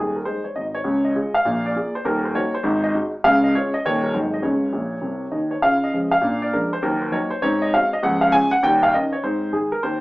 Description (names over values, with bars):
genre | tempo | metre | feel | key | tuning
jazz, stride piano | 200 BPM | 4/4 | swing 65% on 8ths | Db major | A4 = 439 Hz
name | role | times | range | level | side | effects
warm upright piano | solo | 0.0-10.0 s | Eb1 to Ab5 | -18 LUFS | equal | none
room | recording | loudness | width
wet club reverb, RT60 0.6 s | heard from further back in the room, small speaker sound | -18 LUFS | side -20 dB against mid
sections
0.0-5.6 A section; 5.6-10.0 A section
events
upright piano fill 4.7-5.6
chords
0.0 Ab; 0.8 Db; 1.4 Bb7; 2.0 Ebm; 2.6 Ab5; 3.2 Db; 3.8 Eb7; 4.1 Ab7; 4.4 Bbmadd11; 5.6 Db; 6.2 Bb7; 6.8 Ebm; 7.4 Ab7; 8.0 Db; 8.6 Eb7; 9.2 Ab